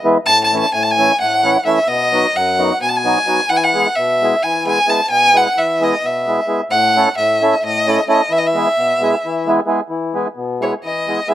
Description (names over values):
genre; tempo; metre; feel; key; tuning
balkan folk; 262 BPM (eighths); 7/8; straight; E major; A4 = 439 Hz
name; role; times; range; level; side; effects
mellow accordion; accompaniment; 0.0-11.3 s; F#2 to A4; -17 LUFS; equal; none
clear violin; melody; 0.3-11.3 s; C#5 to A5; -14 LUFS; equal; slapback echo
room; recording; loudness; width
little or no reverb; recorded outdoors, with no room sound; -13 LUFS; side -12 dB against mid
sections
0.0-9.9 A section; 9.9-11.3 B section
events
violin solo 9.9-11.3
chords
0.3 A; 1.9 B; 3.5 E; 6.7 A; 8.3 E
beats
0.04 | 0.27 0.50 0.73 0.96 1.19 1.42 1.65 | 1.88 2.11 2.34 2.57 2.80 3.03 3.26 | 3.49 3.72 3.95 4.18 4.41 4.64 4.87 | 5.10 5.33 5.56 5.79 6.02 6.25 6.47 | 6.70 6.93 7.16 7.39 7.62 7.85 8.07 | 8.30 8.53 8.76 8.99 9.22 9.44 9.67 | 9.90 10.13 10.35 10.58 10.81 11.04 11.26